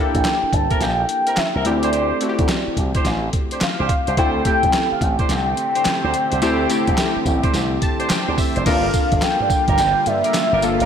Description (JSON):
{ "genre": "R&B, new jack swing", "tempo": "107 BPM", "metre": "4/4", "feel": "swing 64% on 16ths", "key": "G dorian", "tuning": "A4 = 441 Hz", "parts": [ { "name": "warm velvety synth lead", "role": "melody", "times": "0.0-10.9 s", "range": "D5 to A5", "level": "-21 LUFS", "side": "equal", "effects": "chorus, slapback echo" }, { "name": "warm analog keys", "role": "accompaniment", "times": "0.0-10.9 s", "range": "A3 to A5", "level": "-24 LUFS", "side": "left 2 dB", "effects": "chorus, slapback echo" }, { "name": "slap bass with an envelope filter", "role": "bass", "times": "0.1-10.9 s", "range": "F1 to G2", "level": "-24 LUFS", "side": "right 1 dB", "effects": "none" }, { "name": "boom bap sampler-style drum kit", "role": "drums", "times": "0.1-10.9 s", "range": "crash cymbal, handclaps, hi-hat, kick drum, snare drum, tambourine", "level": "-22 LUFS", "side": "equal", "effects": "none" }, { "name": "dark horn section", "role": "stabs", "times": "0.7-10.9 s", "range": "C4 to C5", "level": "-27 LUFS", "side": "right 3 dB", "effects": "slapback echo" }, { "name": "lush unison pad", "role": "sustained chords", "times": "4.2-10.9 s", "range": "D3 to G4", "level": "-27 LUFS", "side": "right 2 dB", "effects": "chorus, phaser" } ], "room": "moderate lush hall reverb, RT60 1.7 s", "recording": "big arena sound", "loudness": "-16 LUFS", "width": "side -8 dB against mid", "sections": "0.0-8.7 A section; 8.7-10.9 B section", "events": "synth keys fill 7.5-8.7", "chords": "0.0 C7; 1.7 D7sus4; 8.7 Gm7", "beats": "0.25 0.81 1.37 | 1.93 2.49 3.05 3.61 | 4.17 4.74 5.30 5.86 | 6.42 6.98 7.54 8.10 | 8.66 9.22 9.78 10.34" }